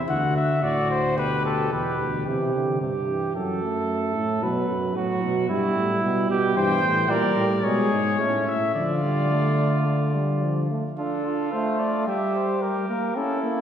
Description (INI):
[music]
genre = classical, imitative canzona for brass ensemble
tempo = 110 BPM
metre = 4/4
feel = straight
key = C major, D minor from 6.6 s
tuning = A4 = 440 Hz
[part]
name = mellow trumpet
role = second line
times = 0.0-13.6 s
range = C#4 to C5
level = -27 LUFS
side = right 3 dB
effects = none
[part]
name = warm trombone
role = accompaniment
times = 0.0-13.6 s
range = A2 to D4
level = -27 LUFS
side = right 1 dB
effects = none
[part]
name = mellow trumpet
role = melody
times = 0.1-2.3, 6.6-13.6 s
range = A4 to G5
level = -27 LUFS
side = left 4 dB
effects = none
[part]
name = warm bass trombone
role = bass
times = 0.1-10.7 s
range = D2 to D3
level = -26 LUFS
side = equal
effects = none
[sound]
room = wet scoring stage reverb, RT60 2.0 s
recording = heard from further back in the room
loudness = -21 LUFS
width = side -9 dB against mid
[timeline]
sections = 0.0-2.3 A section; 2.3-11.0 B section; 11.0-13.6 C section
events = none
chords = 0.1 D; 1.2 G/D; 2.3 C; 3.3 F#m; 4.4 B5; 5.5 Em/G; 6.6 Edim/G; 7.6 G#madd11; 8.2 A; 8.7 Dm; 12.1 Edim/G